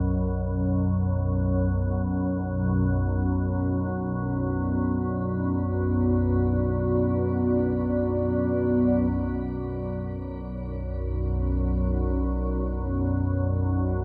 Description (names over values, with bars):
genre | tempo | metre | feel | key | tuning
dark ambient drone | free time | none | none | B minor | A4 = 439 Hz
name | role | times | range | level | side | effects
organ-like drone | drone | 0.0-14.0 s | B1 to F#2 | -27 LUFS | equal | ensemble chorus, built-in reverb
dark analog pad | sustained chords | 1.7-14.0 s | B3 to D5 | -32 LUFS | equal | chorus, shimmer reverb
room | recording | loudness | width
wet cathedral reverb, RT60 6.0 s | none | -26 LUFS | mono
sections
0.0-9.1 A section; 9.1-14.0 B section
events
fade-in on analog synth pad 9.1-14.0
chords
0.0 Bm